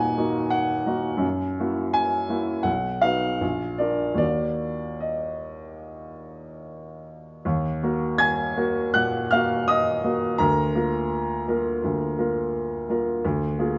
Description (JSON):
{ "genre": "classical, romantic character piece for solo piano", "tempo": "72-89 BPM", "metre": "4/4", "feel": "rubato", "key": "Eb minor", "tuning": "A4 = 444 Hz", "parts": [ { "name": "warm upright piano", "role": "solo", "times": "0.0-13.8 s", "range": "Bb1 to Ab6", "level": "-25 LUFS", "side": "equal", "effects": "none" } ], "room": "moderate large studio reverb, RT60 1.3 s", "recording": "nothing above 7.5 kHz", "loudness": "-24 LUFS", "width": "mono", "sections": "0.0-7.4 A section; 7.4-13.8 A section", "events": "none", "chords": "0.0 Ebm; 1.2 Gb7; 2.7 B; 3.4 Bb; 4.2 Ebm; 10.4 Bb/D; 13.2 Bb7/D", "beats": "0.53 | 1.23 1.95 2.66 3.42 | 4.20 5.02 5.83 6.63 | 7.44 8.18 8.92 9.66 | 10.38 11.09 11.82 12.53 | 13.23" }